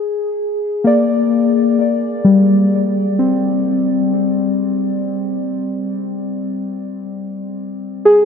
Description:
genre	ambient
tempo	free time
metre	none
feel	none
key	unclear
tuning	A4 = 440 Hz
part	muted felt-like synth keys	solo	0.0-8.2 s	G3 to D5	-14 LUFS	left 2 dB	chorus, ping-pong delay
room	wet huge ambient reverb, RT60 9.1 s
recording	none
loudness	-14 LUFS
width	side -6 dB against mid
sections	0.0-2.9 A section; 2.9-8.2 B section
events	none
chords	0.1 Gm; 2.9 N.C.

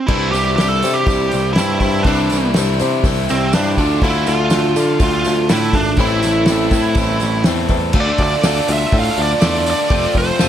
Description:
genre	folk rock and heartland rock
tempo	122 BPM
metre	4/4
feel	straight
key	D minor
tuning	A4 = 440 Hz
part	biting lead guitar	melody	0.0-10.5 s	C4 to F5	-19 LUFS	right 3 dB	overdrive
part	picked swing-style acoustic guitar	accompaniment	0.1-10.5 s	A2 to C5	-22 LUFS	left 5 dB	none
part	biting overdriven guitar	riff	0.1-10.5 s	F2 to F4	-22 LUFS	equal	none
part	picked electric bass	bass	0.1-10.5 s	F1 to D3	-20 LUFS	equal	none
part	cloth-damped thuddy drum kit	drums	0.1-10.5 s	crash cymbal, hi-hat, kick drum, snare drum	-19 LUFS	equal	none
part	tambourine	percussion	0.3-10.5 s	none	-32 LUFS	right 8 dB	none
room	little or no reverb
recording	none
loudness	-13 LUFS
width	side -10 dB against mid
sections	0.1-8.0 A section; 8.0-10.5 B section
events	none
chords	0.1 Cadd9; 3.8 Dm; 6.0 Am; 8.0 Dm; 9.9 F

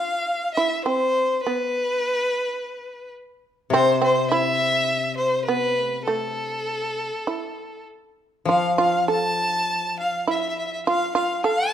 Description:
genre	japanese traditional, Japanese chamber music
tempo	49-54 BPM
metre	2/4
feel	rubato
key	A hirajoshi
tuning	A4 = 440 Hz
part	clear violin	melody	0.0-11.7 s	A4 to A5	-22 LUFS	left 1 dB	none
part	shamisen	second line	0.0-11.7 s	A3 to A4	-24 LUFS	right 4 dB	none
part	koto	accompaniment	3.7-11.7 s	C3 to F3	-28 LUFS	left 6 dB	none
room	moderate recital hall reverb, RT60 1.4 s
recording	dark, warm production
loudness	-20 LUFS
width	side -10 dB against mid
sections	0.0-11.7 A section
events	none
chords	none

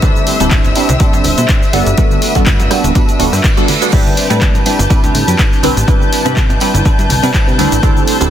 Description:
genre	filtered disco house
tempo	123 BPM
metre	4/4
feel	swing 55% on 16ths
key	G major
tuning	A4 = 435 Hz
part	funky polysynth comp	accompaniment	0.0-8.3 s	G3 to B4	-16 LUFS	right 2 dB	chorus, phaser, sidechain pumping
part	dark studio string section	sustained chords	0.0-8.3 s	E5 to G6	-20 LUFS	left 4 dB	sidechain pumping
part	direct-recorded clean electric guitar	riff	0.0-8.3 s	G3 to C5	-22 LUFS	right 3 dB	analog chorus, sidechain pumping
part	plucky analog bass	bass	0.0-8.3 s	D1 to C3	-16 LUFS	equal	tube saturation, sidechain pumping
part	electronic kick drum	drums	0.0-7.9 s	none	-12 LUFS	equal	none
part	punchy analog drum machine	drums	0.0-8.3 s	cabasa, crash cymbal, handclaps, hi-hat, rim click	-19 LUFS	left 1 dB	sidechain pumping on hats, sidechain pumping on perc, sidechain pumping on cymbals
part	tambourine and congas	percussion	0.0-8.3 s	none	-23 LUFS	right 2 dB	sidechain pumping on perc
part	reverse cymbal	sound effects	3.3-3.9 s	none	-24 LUFS	right 7 dB	none
room	digital ambience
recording	dense, heavily limited modern master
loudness	-9 LUFS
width	side -10 dB against mid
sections	0.0-8.3 A section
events	reverse cymbal 3.3-3.9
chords	0.0 D7sus4; 1.7 Gmaj9; 3.9 Am11; 5.9 Cmaj9; 7.6 D7sus4

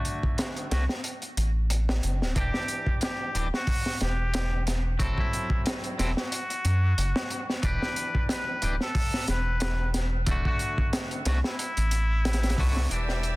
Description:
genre	trip hop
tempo	91 BPM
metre	4/4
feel	swing 54% on 16ths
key	unclear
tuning	A4 = 440 Hz
part	clean electric guitar	accompaniment	0.0-13.4 s	D3 to A4	-36 LUFS	equal	tremolo, low-pass filter, tape echo
part	crunchy breakbeat drum kit	drums	0.0-13.4 s	hi-hat, kick drum, snare drum	-28 LUFS	equal	high-pass filter on kick, high-pass filter on hats, high-pass filter on snare, high-pass filter on room
part	round analog bass	bass	0.7-13.4 s	D1 to F#2	-26 LUFS	equal	none
part	trumpet with straight mute	melody	2.4-13.4 s	E4 to B4	-32 LUFS	left 1 dB	dub echo
part	clear chamber violin section	sustained chords	12.9-13.4 s	D5 to E6	-36 LUFS	left 1 dB	none
room	small room ambience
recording	dense, heavily limited modern master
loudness	-25 LUFS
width	side -20 dB against mid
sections	0.0-12.9 A section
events	none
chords	0.0 D; 2.4 Em7; 5.0 F#m7b5; 7.6 Em7; 10.3 D

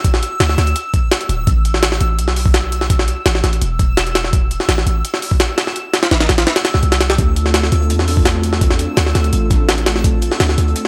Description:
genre	drum and bass, jungle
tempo	168 BPM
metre	4/4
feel	straight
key	D dorian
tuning	A4 = 440 Hz
part	jungle sampler-style drum kit	drums	0.0-10.9 s	hi-hat, kick drum, snare drum	-18 LUFS	equal	none
part	backwards swelling texture	texture	0.0-10.9 s	E6	-29 LUFS	equal	built-in reverb
part	warm 808-style bass	bass	0.4-10.7 s	D1 to E2	-19 LUFS	equal	none
part	airy breathy pad	sustained chords	7.2-10.9 s	A3 to A4	-25 LUFS	equal	chorus
part	crunchy breakbeat drum kit	drums	7.2-10.9 s	hi-hat, snare drum	-33 LUFS	equal	none
room	light reverb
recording	none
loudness	-15 LUFS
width	mono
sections	0.0-10.9 A section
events	none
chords	0.0 D5; 1.5 A5; 7.2 Dm7

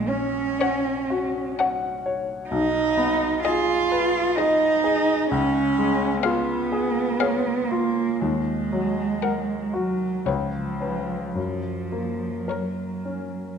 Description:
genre	classical, slow romantic movement for piano quartet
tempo	52-66 BPM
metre	3/4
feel	rubato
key	F# major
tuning	A4 = 440 Hz
part	warm cello	second line	0.0-13.6 s	E#3 to E#4	-24 LUFS	right 4 dB	none
part	clear grand piano	accompaniment	0.0-13.6 s	A#1 to F#5	-26 LUFS	left 3 dB	none
part	rich violin	melody	0.6-13.4 s	C#5 to F#5	-30 LUFS	left 8 dB	none
part	dark violin	second line	0.6-13.4 s	G#4 to C#5	-33 LUFS	left 6 dB	none
room	wet recital hall reverb, RT60 1.8 s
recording	minimal, uncompressed stereo recording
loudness	-21 LUFS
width	side -7 dB against mid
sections	0.0-13.6 A section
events	none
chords	0.0 F#/A#; 2.5 G#m/B; 5.3 C#7; 8.2 D#m; 10.3 C#7; 11.4 F#

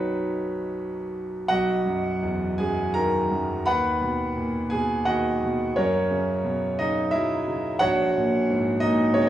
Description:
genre	classical, romantic character piece for solo piano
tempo	86 BPM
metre	3/4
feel	uneven beats, rubato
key	B major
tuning	A4 = 440 Hz
part	clear concert grand piano	solo	0.0-9.3 s	A#1 to B5	-22 LUFS	equal	none
room	moderate recital hall reverb, RT60 1.4 s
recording	small room ambience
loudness	-22 LUFS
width	side -12 dB against mid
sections	0.0-1.5 A section; 1.5-9.3 B section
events	none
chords	0.0 B; 3.6 B/D#; 5.7 F#; 7.8 F#/A#

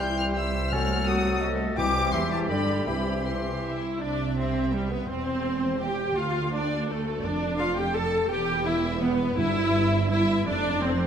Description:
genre	classical, dramatic, fast romantic movement for symphony orchestra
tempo	167 BPM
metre	3/4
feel	rubato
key	C major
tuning	A4 = 443 Hz
part	rich studio violin section	melody	0.0-11.1 s	A4 to G6	-34 LUFS	left 3 dB	none
part	clear oboe	second line	0.0-3.8 s	G4 to C5	-35 LUFS	right 1 dB	none
part	mellow clarinet	second line	0.0-3.8 s	D5 to Ab5	-34 LUFS	left 3 dB	none
part	rich symphonic violin section	second line	0.0-11.1 s	Gb4 to A5	-34 LUFS	left 1 dB	none
part	rich symphonic viola section	accompaniment	0.0-11.1 s	E3 to A4	-28 LUFS	equal	none
part	warm bassoon	accompaniment	0.0-3.8 s	D3 to G3	-35 LUFS	equal	none
part	mellow French horn section	sustained chords	0.0-3.8 s	G3 to Gb4	-33 LUFS	left 4 dB	none
part	rich symphonic double bass section	bass	0.0-11.1 s	E1 to D2	-31 LUFS	right 2 dB	none
part	warm symphonic cello section	bass	0.0-11.1 s	C2 to C3	-32 LUFS	right 2 dB	none
part	timpani	percussion	0.7-2.1, 9.4-9.9 s	G2 to C3	-36 LUFS	left 3 dB	none
room	moderate scoring stage reverb, RT60 2.1 s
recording	none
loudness	-23 LUFS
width	side -8 dB against mid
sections	0.0-4.0 A section; 4.0-11.1 B section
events	none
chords	0.0 C; 0.7 Cdim7; 1.8 C; 2.1 C/E; 2.5 G; 2.9 C; 5.1 C/E; 6.2 Dm; 7.2 Dm/F; 8.3 Em; 9.4 Em/G; 10.5 F

